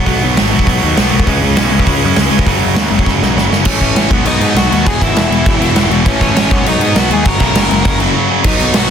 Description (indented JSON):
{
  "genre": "punk rock",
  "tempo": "200 BPM",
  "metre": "4/4",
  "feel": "straight",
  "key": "B major from 3.7 s",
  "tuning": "A4 = 440 Hz",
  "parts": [
    { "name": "overdriven electric guitar", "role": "riff", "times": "0.0-8.9 s", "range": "E2 to C#4", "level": "-18 LUFS", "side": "left 14 dB", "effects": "none" },
    { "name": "tight distorted guitar", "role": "riff", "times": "0.0-8.9 s", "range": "E2 to C#4", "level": "-17 LUFS", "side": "right 13 dB", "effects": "distortion" },
    { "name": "fuzz picked electric bass", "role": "bass", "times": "0.0-8.9 s", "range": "E1 to G#2", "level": "-16 LUFS", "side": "equal", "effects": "overdrive" },
    { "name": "big rock drum kit", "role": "drums", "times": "0.1-8.8 s", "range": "crash cymbal, hi-hat, kick drum, snare drum", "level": "-14 LUFS", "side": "equal", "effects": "none" },
    { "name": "dark smooth lead guitar", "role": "melody", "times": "3.7-8.9 s", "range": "C#4 to A#5", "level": "-18 LUFS", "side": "equal", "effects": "overdrive" }
  ],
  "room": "light reverb",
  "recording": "dense, heavily limited modern master",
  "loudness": "-10 LUFS",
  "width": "side -8 dB against mid",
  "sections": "0.0-3.7 A section; 3.7-8.4 B section",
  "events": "drum fill 3.1-3.7",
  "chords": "0.0 B5; 1.3 C#5; 2.5 F#5; 3.7 A; 4.1 B; 4.9 E; 6.1 A; 6.5 B; 7.3 F#"
}